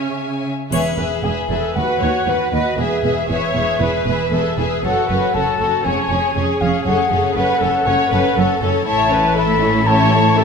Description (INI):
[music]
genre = classical, dramatic, fast romantic movement for symphony orchestra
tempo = 118 BPM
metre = 4/4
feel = rubato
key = E major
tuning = A4 = 440 Hz
[part]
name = warm symphonic violin section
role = melody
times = 0.0-10.4 s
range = B4 to G#5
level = -27 LUFS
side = left 6 dB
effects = none
[part]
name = warm symphonic violin section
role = second line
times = 0.0-10.4 s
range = C#4 to E5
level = -22 LUFS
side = left 3 dB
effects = none
[part]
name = rich symphonic viola section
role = accompaniment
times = 0.0-10.4 s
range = C#4 to C#5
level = -22 LUFS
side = right 1 dB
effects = none
[part]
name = rich symphonic cello section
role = bass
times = 0.0-10.4 s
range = D#2 to C#3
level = -23 LUFS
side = right 3 dB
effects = none
[part]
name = mellow concert flute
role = second line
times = 0.7-10.4 s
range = D#5 to B5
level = -20 LUFS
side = left 2 dB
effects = none
[part]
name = rich symphonic double bass section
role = bass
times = 0.7-10.4 s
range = E1 to D#2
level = -23 LUFS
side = right 3 dB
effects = none
[part]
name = triangle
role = percussion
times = 0.7-1.7 s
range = none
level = -33 LUFS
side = left 6 dB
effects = none
[sound]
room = wet concert hall reverb, RT60 2.1 s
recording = minimal, uncompressed stereo recording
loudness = -15 LUFS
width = side -5 dB against mid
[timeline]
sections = 0.7-10.4 A section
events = none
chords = 0.0 C#m; 0.7 E; 1.8 B/D#; 2.8 E; 4.8 F#m; 5.8 C#/E#; 6.9 F#m; 8.9 A; 9.9 A7